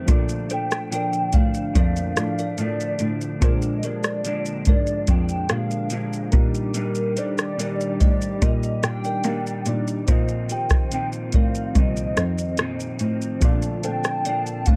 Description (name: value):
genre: indie pop, bedroom pop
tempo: 72 BPM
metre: 4/4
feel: straight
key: Bb major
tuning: A4 = 440 Hz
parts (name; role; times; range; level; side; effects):
- electric guitar through a small old amp; accompaniment; 0.0-14.8 s; Bb2 to F4; -32 LUFS; equal; ensemble chorus, warbly pitch drift, plate reverb
- reed electric piano; accompaniment; 0.0-14.8 s; F3 to Eb5; -37 LUFS; equal; overdrive, plate reverb
- hollow soft pad; sustained chords; 0.1-14.8 s; D3 to A5; -37 LUFS; equal; chorus, plate reverb
- clear cello; bass; 0.1-14.8 s; C2 to Bb3; -29 LUFS; equal; none
- soft vintage rhythm box; drums; 0.1-14.8 s; hi-hat, kick drum, rim click, shaker; -22 LUFS; equal; none
- hollow clarinet-like synth lead; melody; 0.5-14.8 s; Bb4 to G5; -31 LUFS; equal; ensemble chorus, plate reverb
- kalimba; second line; 0.5-14.8 s; F4 to F5; -39 LUFS; equal; analog chorus, tape echo, plate reverb
room: little or no reverb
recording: cassette tape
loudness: -23 LUFS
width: mono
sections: 0.1-14.8 A section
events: none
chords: 0.1 Bbmaj7; 3.4 Bb7; 6.3 Ebmaj7; 10.1 F7sus4; 13.4 Bbmaj7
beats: | 0.09 0.92 1.76 2.59 | 3.42 4.26 5.09 5.92 | 6.76 7.59 8.43 9.26 | 10.09 10.92 11.76 12.59 | 13.42 14.25